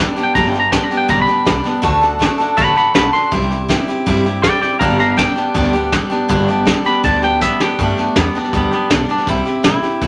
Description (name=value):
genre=rockabilly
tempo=161 BPM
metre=4/4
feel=straight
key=G major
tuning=A4 = 441 Hz
part: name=picked steel-string acoustic guitar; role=accompaniment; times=0.0-10.1 s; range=G2 to A4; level=-19 LUFS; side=equal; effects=none
part: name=twangy electric guitar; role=melody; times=0.2-10.1 s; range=A3 to C6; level=-20 LUFS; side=equal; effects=none
part: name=upright bass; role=bass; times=0.2-10.1 s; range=G1 to G2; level=-25 LUFS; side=equal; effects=none
part: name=vintage brush drum kit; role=drums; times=0.2-10.1 s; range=hi-hat, kick drum, snare drum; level=-21 LUFS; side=equal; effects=none
room=moderate studio reverb, RT60 0.8 s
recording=none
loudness=-15 LUFS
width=mono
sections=0.0-7.8 A section; 7.8-10.1 B section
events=clean electric guitar solo 0.0-7.8; drum fill 7.4-7.8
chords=0.0 G; 1.8 D; 3.3 C; 4.8 G; 9.3 C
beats=| 0.35 0.72 1.09 1.47 | 1.84 2.21 2.58 2.95 | 3.32 3.69 4.07 4.44 | 4.81 5.18 5.55 5.92 | 6.29 6.67 7.04 7.41 | 7.78 8.15 8.53 8.90 | 9.27 9.65 10.02